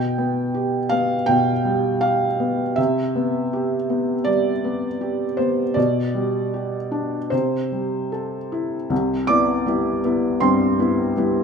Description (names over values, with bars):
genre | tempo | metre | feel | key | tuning
neoclassical minimalist piano | 80 BPM | 4/4 | rubato | C major | A4 = 439 Hz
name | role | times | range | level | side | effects
felt-muted upright piano | solo | 0.0-11.4 s | C2 to D6 | -19 LUFS | equal | none
room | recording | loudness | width
moderate recital hall reverb, RT60 1.3 s | minimal, uncompressed stereo recording | -19 LUFS | side -6 dB against mid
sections
0.0-8.9 A section; 8.9-11.4 B section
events
none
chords
0.0 G/B; 2.8 Cmaj7; 5.8 G/B; 7.3 C6; 8.9 Cmaj7